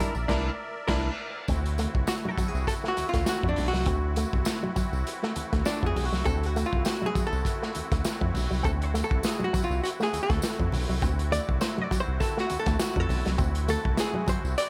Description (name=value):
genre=funk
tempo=101 BPM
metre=4/4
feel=swing 56% on 16ths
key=D mixolydian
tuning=A4 = 440 Hz
part: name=hollow-body jazz guitar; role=accompaniment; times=0.0-14.7 s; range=D4 to D5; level=-33 LUFS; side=equal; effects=none
part: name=musette accordion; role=sustained chords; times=0.0-14.7 s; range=C4 to E5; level=-39 LUFS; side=equal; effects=none
part: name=electric guitar with an envelope filter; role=riff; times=0.0-14.4 s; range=F3 to C4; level=-37 LUFS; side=equal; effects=none
part: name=round analog bass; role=bass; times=0.0-14.6 s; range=Bb1 to F2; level=-31 LUFS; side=equal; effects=none
part: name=crunchy breakbeat drum kit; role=drums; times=0.0-14.7 s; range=crash cymbal, hi-hat, kick drum, snare drum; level=-32 LUFS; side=equal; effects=none
part: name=tambourine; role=percussion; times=0.1-14.7 s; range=none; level=-45 LUFS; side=equal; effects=none
part: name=congas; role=percussion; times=1.5-14.4 s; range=none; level=-42 LUFS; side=equal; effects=none
room=light reverb, studio reverb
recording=none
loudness=-27 LUFS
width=mono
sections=0.0-1.5 A section; 1.5-14.7 B section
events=band accent 0.3-1.5; hollow-body jazz guitar solo 1.5-14.7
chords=0.0 C9; 1.5 D9